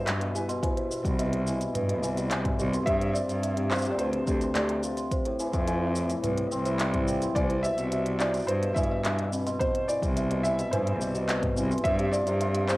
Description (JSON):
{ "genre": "folktronica", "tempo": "107 BPM", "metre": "4/4", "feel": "straight", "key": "C major", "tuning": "A4 = 440 Hz", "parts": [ { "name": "felt-muted upright piano", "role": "melody", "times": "0.0-12.7 s", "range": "B4 to E5", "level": "-31 LUFS", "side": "equal", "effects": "cassette tape" }, { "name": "worn celesta", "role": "second line", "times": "0.0-12.8 s", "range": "C4 to C6", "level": "-35 LUFS", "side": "right 2 dB", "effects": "analog delay" }, { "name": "hammered dulcimer", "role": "arpeggios", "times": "0.0-12.8 s", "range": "A2 to E4", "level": "-31 LUFS", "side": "left 1 dB", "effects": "analog delay" }, { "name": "rich cello", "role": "bass", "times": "0.1-12.8 s", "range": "C2 to G2", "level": "-29 LUFS", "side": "equal", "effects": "tube saturation" }, { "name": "organic electronic drum kit", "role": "drums", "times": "0.1-12.8 s", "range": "cabasa, handclaps, hi-hat, toms", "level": "-33 LUFS", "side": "equal", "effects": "cassette tape" }, { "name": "electronic kick drum", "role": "drums", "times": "0.6-12.0 s", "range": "none", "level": "-31 LUFS", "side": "equal", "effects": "cassette tape" } ], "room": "moderate studio reverb, RT60 0.5 s", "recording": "home recording on cassette", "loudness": "-25 LUFS", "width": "side -19 dB against mid", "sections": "0.0-12.8 A section", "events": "none", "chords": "0.0 Cmaj7; 2.9 G7sus4; 5.1 Fmaj7; 7.4 Cmaj7; 11.8 G7sus4" }